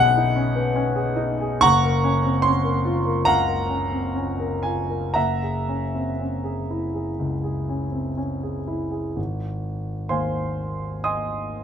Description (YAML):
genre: classical, impressionist solo piano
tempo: 56-78 BPM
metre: 4/4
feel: rubato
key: unclear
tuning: A4 = 439 Hz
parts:
  - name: warm grand piano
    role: solo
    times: 0.0-11.6 s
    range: Gb1 to Eb6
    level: -21 LUFS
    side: equal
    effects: none
room: light reverb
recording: dark, warm production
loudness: -21 LUFS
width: side -8 dB against mid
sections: 0.0-9.2 A section; 9.2-11.6 B section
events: none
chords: 0.0 C#m9/B; 1.6 Gbmaj7; 5.2 Gb9; 9.2 Ab6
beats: 0.75 | 1.64 2.45 3.27 4.14 | 5.15 6.20 7.21 8.19 | 9.17 10.11 11.05